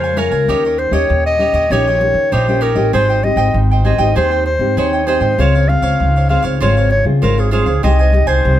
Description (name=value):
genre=samba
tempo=98 BPM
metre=4/4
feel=straight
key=Ab major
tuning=A4 = 441 Hz
part: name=warm clarinet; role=melody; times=0.0-8.6 s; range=Ab4 to F5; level=-16 LUFS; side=left 1 dB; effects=none
part: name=cavaquinho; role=accompaniment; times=0.0-8.6 s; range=Eb4 to Ab5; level=-21 LUFS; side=right 5 dB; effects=none
part: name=nylon-string guitar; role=accompaniment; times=0.0-8.6 s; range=Ab2 to Ab4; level=-20 LUFS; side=left 2 dB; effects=none
part: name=upright bass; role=bass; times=0.0-8.6 s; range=Ab1 to Eb3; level=-15 LUFS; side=equal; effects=none
room=light reverb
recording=none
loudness=-12 LUFS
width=side -12 dB against mid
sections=0.0-8.6 A section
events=none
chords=0.5 Eb7; 2.9 Abmaj7; 5.4 Dbmaj7; 7.8 Abmaj7/C